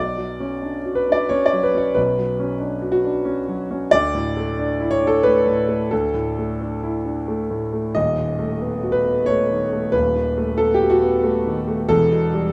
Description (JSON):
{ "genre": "neoclassical minimalist piano", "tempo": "90 BPM", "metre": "3/4", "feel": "rubato", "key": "unclear", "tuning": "A4 = 442 Hz", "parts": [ { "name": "warm grand piano", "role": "solo", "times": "0.0-12.5 s", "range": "D#1 to D#5", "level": "-20 LUFS", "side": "equal", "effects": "none" } ], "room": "light reverb", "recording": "none", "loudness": "-20 LUFS", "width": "mono", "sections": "0.0-12.5 A section", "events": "none", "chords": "0.0 Bmadd9; 3.9 Dsus2; 7.9 B7/D#; 11.9 Em" }